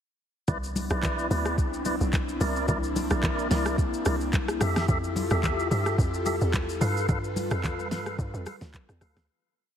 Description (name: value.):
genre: amapiano.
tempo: 109 BPM.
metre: 4/4.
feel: swing 55% on 16ths.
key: C major.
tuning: A4 = 444 Hz.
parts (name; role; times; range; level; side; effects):
airy breathy pad; sustained chords; 0.8-9.3 s; G3 to B4; -32 LUFS; left 2 dB; chorus, sidechain pumping.
tonewheel organ; stabs; 0.5-9.3 s; E4 to F5; -32 LUFS; right 1 dB; overdrive, fast rotary speaker, ping-pong delay.
hollow log drum bass; bass; 0.5-9.3 s; Bb1 to G2; -30 LUFS; equal; none.
smooth R&B drum kit; drums; 0.5-9.3 s; handclaps, hi-hat, kick drum, rim click, shaker, snare drum; -30 LUFS; equal; none.
congas; percussion; 0.5-9.2 s; none; -34 LUFS; left 1 dB; none.
room: light reverb, digital ambience.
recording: heavily compressed radio sound, multiband compression.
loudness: -24 LUFS.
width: side -9 dB against mid.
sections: 0.5-9.3 drop.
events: drop 0.5-9.3; fade-out 7.1-9.3.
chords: 0.5 Cmaj9; 2.4 C9; 4.6 Fmaj9; 6.8 G9.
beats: | 0.48 1.03 1.58 2.13 | 2.68 3.23 3.79 4.33 | 4.89 5.44 5.99 6.54 | 7.09 7.64 8.19 8.74.